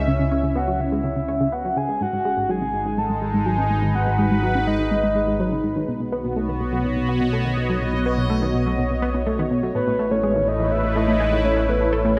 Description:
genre	ambient, sequencer-driven space music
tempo	124 BPM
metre	4/4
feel	straight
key	unclear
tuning	A4 = 442 Hz
part	soft octave-layered synth lead	melody	0.0-5.6, 9.7-12.2 s	B4 to A5	-26 LUFS	equal	chorus, phaser, delay
part	sweeping resonant pad	sustained chords	0.0-12.2 s	G#3 to E5	-28 LUFS	equal	chorus
part	tight sequenced synth	riff	0.0-12.2 s	G#2 to C#4	-27 LUFS	equal	chorus, phaser, vintage 12-bit sampler grit, delay
part	fat analog bass	bass	0.0-12.2 s	G#1 to C#2	-28 LUFS	equal	none
room	moderate plate reverb, RT60 2.4 s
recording	dreamy mix soaked in reverb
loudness	-22 LUFS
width	mono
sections	0.0-12.2 A section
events	filter sweep on synth arpeggio sound 0.0-12.2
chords	0.0 C#m7; 2.0 G#m7; 5.9 Badd9; 9.8 Amaj7

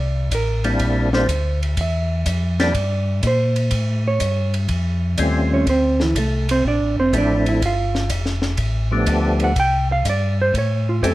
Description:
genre	soul jazz organ trio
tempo	123 BPM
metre	4/4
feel	swing 68% on 8ths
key	C mixolydian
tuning	A4 = 438 Hz
part	hollow-body jazz guitar	accompaniment	0.0-11.1 s	E3 to G5	-21 LUFS	right 2 dB	none
part	mellow tonewheel organ	bass	0.0-11.1 s	F1 to Bb2	-20 LUFS	equal	chorus vibrato, slow rotary speaker
part	compact cocktail drum kit	drums	0.3-11.1 s	hi-hat, kick drum, ride cymbal, snare drum	-26 LUFS	equal	none
part	percussive tonewheel organ	melody	0.6-11.1 s	F3 to G4	-20 LUFS	left 1 dB	slow rotary speaker, overdrive, chorus vibrato
room	light reverb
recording	none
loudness	-17 LUFS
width	side -16 dB against mid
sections	0.0-11.1 A section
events	hollow-body jazz guitar solo 0.0-11.1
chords	0.0 C9; 3.7 A7alt; 5.7 Dm7; 7.6 G9; 9.6 C5; 10.5 A7alt

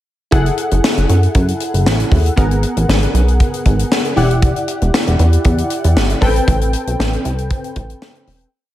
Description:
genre	early-eighties boogie funk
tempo	117 BPM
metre	4/4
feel	straight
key	unclear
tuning	A4 = 440 Hz
part	funky polysynth comp	accompaniment	0.3-8.5 s	B3 to G5	-20 LUFS	equal	chorus
part	plucky analog bass	bass	0.3-8.5 s	E1 to F#2	-14 LUFS	equal	none
part	tight funk drum kit	drums	0.3-8.5 s	hi-hat, kick drum, snare drum	-17 LUFS	equal	gated reverb
room	small room ambience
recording	none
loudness	-12 LUFS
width	side -14 dB against mid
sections	0.3-8.5 verse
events	fade-out 6.5-8.5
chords	0.3 F#m9; 2.4 G#m9; 4.2 Em9; 6.2 Am9

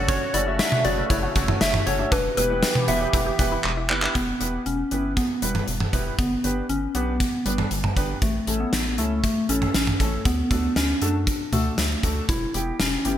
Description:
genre	synth-pop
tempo	118 BPM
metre	4/4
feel	straight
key	E dorian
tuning	A4 = 441 Hz
part	soft struck synth lead	melody	0.0-13.2 s	G3 to E5	-26 LUFS	left 1 dB	chorus, tremolo
part	warm baby grand piano	accompaniment	0.0-13.2 s	G3 to E5	-30 LUFS	right 1 dB	lush chorus
part	sweeping resonant pad	sustained chords	0.0-4.1 s	C#3 to G4	-31 LUFS	left 1 dB	chorus
part	resonant blip pluck	arpeggios	0.0-4.1 s	C#4 to G4	-33 LUFS	left 1 dB	phaser, digital delay
part	rubbery square bass	bass	0.0-13.2 s	E1 to F#2	-28 LUFS	equal	none
part	gated 80s drum kit	drums	0.1-13.2 s	handclaps, hi-hat, kick drum, snare drum, toms	-24 LUFS	equal	gated reverb
room	light reverb, small room ambience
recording	bright 1980s-style digital production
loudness	-20 LUFS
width	side -11 dB against mid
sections	0.0-4.2 A section; 4.2-13.2 B section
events	drum fill 3.6-4.2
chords	0.0 F#m; 2.1 Em; 6.2 G; 8.2 A; 10.3 D; 12.3 Em

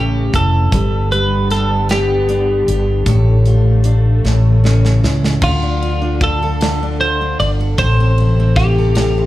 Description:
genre	six-eight pop ballad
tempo	51 BPM (dotted quarters)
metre	6/8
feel	straight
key	D minor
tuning	A4 = 445 Hz
part	twelve-string electric guitar	melody	0.0-9.3 s	F4 to D5	-19 LUFS	left 1 dB	slapback echo
part	picked steel-string acoustic guitar	accompaniment	0.0-9.3 s	A2 to B4	-21 LUFS	right 2 dB	slapback echo
part	dark studio string section	sustained chords	0.0-9.3 s	C3 to B3	-24 LUFS	left 1 dB	stereo widening
part	fretless electric bass	bass	0.0-9.3 s	F1 to D2	-14 LUFS	equal	none
part	modern studio drum kit	drums	0.3-9.1 s	crash cymbal, hi-hat, kick drum, ride cymbal, snare drum	-21 LUFS	equal	none
room	small room ambience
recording	live gig heard through the venue's PA, club reverb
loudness	-12 LUFS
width	side -15 dB against mid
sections	0.0-5.4 A section; 5.4-9.3 B section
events	drum fill 4.2-5.4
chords	0.0 A; 0.7 G; 3.1 Dm/A; 4.2 A; 5.4 Dm; 7.8 Am

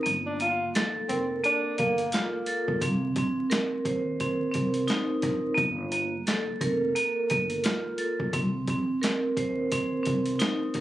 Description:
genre	hip hop, boom-bap hip-hop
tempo	87 BPM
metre	4/4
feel	swing 59% on 16ths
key	G minor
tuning	A4 = 440 Hz
part	vibraphone with hard mallets	accompaniment	0.0-10.8 s	Bb3 to C5	-27 LUFS	right 1 dB	high-pass filter, low-pass filter
part	upright bass	bass	0.1-10.8 s	F1 to Eb2	-33 LUFS	equal	none
part	boom bap sampler-style drum kit	drums	0.1-10.8 s	handclaps, hi-hat, kick drum, snare drum	-30 LUFS	equal	overdrive
part	breathy tenor saxophone	melody	0.3-2.3 s	Bb3 to F4	-32 LUFS	left 1 dB	high-pass filter, low-pass filter, digital delay
room	light reverb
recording	recorded on a phone in the room, club reverb, vinyl crackle, compression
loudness	-25 LUFS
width	side -14 dB against mid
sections	0.0-10.8 A section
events	break 0.1-1.4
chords	0.1 Gm9; 2.8 Cm7; 5.6 Gm9; 8.3 Cm7

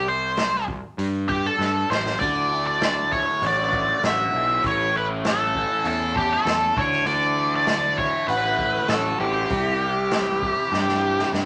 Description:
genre	psychedelic rock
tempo	98 BPM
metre	4/4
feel	straight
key	unclear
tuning	A4 = 438 Hz
part	octave-fuzz lead guitar	melody	0.0-11.3 s	G4 to E5	-25 LUFS	equal	wah, distortion
part	fuzz picked electric bass	bass	0.0-11.5 s	A1 to G2	-31 LUFS	equal	overdrive
part	vintage drum kit	drums	0.4-11.5 s	hi-hat, kick drum, snare drum	-31 LUFS	equal	none
part	combo organ	sustained chords	2.2-11.5 s	E3 to F#4	-39 LUFS	equal	none
part	biting overdriven guitar	riff	2.2-11.5 s	A2 to A4	-29 LUFS	equal	phaser
room	moderate club reverb, RT60 0.7 s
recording	none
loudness	-22 LUFS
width	mono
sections	0.0-11.5 A section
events	drum fill 1.6-2.2, 10.7-11.5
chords	0.0 C5; 2.2 Dadd9; 4.6 A; 6.8 Dadd9; 9.5 C

